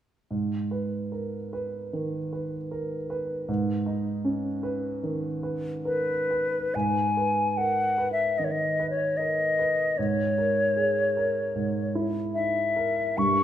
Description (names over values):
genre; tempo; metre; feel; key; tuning
classical, romantic duo for flute and grand piano; 75 BPM; 4/4; uneven beats, rubato; G# minor; A4 = 440 Hz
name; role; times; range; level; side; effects
warm concert grand piano; accompaniment; 0.3-13.4 s; G2 to B4; -28 LUFS; right 2 dB; none
hollow concert flute; melody; 5.9-13.4 s; B4 to C#6; -24 LUFS; left 2 dB; none
room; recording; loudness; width
wet recital hall reverb, RT60 1.6 s; none; -25 LUFS; side -10 dB against mid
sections
0.3-6.7 A section; 6.7-13.4 B section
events
none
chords
0.3 G#m; 10.0 A#m7b5/G#